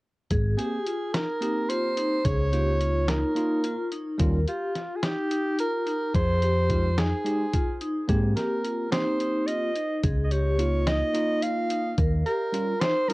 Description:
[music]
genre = progressive instrumental, band music in an uneven meter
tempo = 216 BPM (eighths)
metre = 7/8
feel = straight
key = Ab major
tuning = A4 = 439 Hz
[part]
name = vibraphone with medium hard mallets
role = arpeggios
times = 0.3-13.1 s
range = Eb4 to Bb4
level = -30 LUFS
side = left 2 dB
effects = cassette tape
[part]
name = picked electric bass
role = bass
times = 0.3-12.2 s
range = Ab1 to Ab2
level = -24 LUFS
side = equal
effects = transformer saturation
[part]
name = lo-fi sampler-style drum kit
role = drums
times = 0.3-13.1 s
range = hi-hat, kick drum, snare drum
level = -28 LUFS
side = equal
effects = cassette tape
[part]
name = warm soprano saxophone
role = melody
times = 0.6-13.1 s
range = F4 to F5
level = -28 LUFS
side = right 1 dB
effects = cassette tape, plate reverb, analog delay
[part]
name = bell-like tine electric piano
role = accompaniment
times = 0.6-13.1 s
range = G3 to G4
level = -31 LUFS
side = right 2 dB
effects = cassette tape
[sound]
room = moderate booth ambience, RT60 0.3 s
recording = home recording on cassette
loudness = -23 LUFS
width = side -21 dB against mid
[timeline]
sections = 0.3-13.1 A section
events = none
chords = 0.3 Abmaj9; 2.2 Db69; 4.2 Eb; 6.1 Fm9; 8.1 Abmaj9; 10.0 Db69; 12.0 Eb7

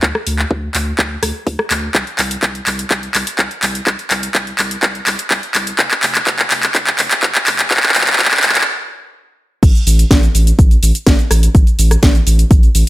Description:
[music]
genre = progressive house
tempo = 125 BPM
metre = 4/4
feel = straight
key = A minor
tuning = A4 = 440 Hz
[part]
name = saturated sub bass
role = bass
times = 0.0-12.8 s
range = F1 to D2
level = -16 LUFS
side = equal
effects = sidechain pumping
[part]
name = electronic kick drum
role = drums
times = 0.0-12.6 s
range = none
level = -11 LUFS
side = equal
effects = high-pass filter on kick
[part]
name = house drum kit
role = drums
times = 0.0-12.8 s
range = crash cymbal, handclaps, hi-hat, rim click, shaker, snare drum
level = -14 LUFS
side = equal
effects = none
[sound]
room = light reverb, digital ambience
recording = high-pass filter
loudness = -11 LUFS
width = side -16 dB against mid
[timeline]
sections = 0.0-9.6 A section; 9.6-12.9 B section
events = build-up 0.0-9.6; drum fill 0.0-8.7; stop 8.7-9.6; drop 9.6-12.9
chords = none

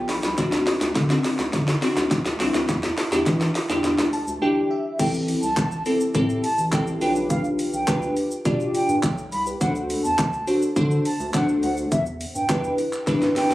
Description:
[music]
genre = dance-pop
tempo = 104 BPM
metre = 4/4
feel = straight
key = A minor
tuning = A4 = 440 Hz
[part]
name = glassy digital keys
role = accompaniment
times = 0.0-13.5 s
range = C4 to B5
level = -23 LUFS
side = left 1 dB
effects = chorus, sidechain pumping
[part]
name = round analog bass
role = bass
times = 0.0-13.5 s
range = A1 to E3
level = -28 LUFS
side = equal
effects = sidechain pumping
[part]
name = house drum kit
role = drums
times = 0.1-13.5 s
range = crash cymbal, handclaps, hi-hat, kick drum, shaker, snare drum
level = -25 LUFS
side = equal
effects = none
[part]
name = mellow hollow silver concert flute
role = melody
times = 5.0-13.5 s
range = E5 to B5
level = -27 LUFS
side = right 1 dB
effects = sidechain pumping, ping-pong delay
[sound]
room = light reverb, digital ambience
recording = recorded on a phone in the room, club reverb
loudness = -20 LUFS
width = side -16 dB against mid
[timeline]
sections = 0.0-5.0 A section; 5.0-13.5 B section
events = build-up 0.0-5.0; drum fill 0.0-4.4, 13.1-13.5; synth keys fill 0.0-0.4, 3.8-5.0; drop 5.0-13.5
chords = 0.4 D7; 2.7 Em7; 5.0 Am7; 7.0 G7/B; 9.6 D7; 11.9 Em7

